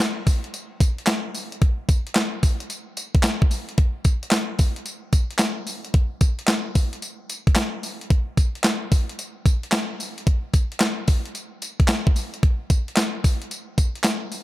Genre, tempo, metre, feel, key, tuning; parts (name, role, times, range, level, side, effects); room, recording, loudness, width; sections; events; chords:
R&B; 111 BPM; 4/4; swing 66% on 16ths
clean 12-bit digital drum machine; drums; 0.0-14.4 s; handclaps, hi-hat, kick drum, snare drum, tambourine; -20 LUFS; equal
light reverb; -20 LUFS; side -17 dB against mid
0.0-14.4 A section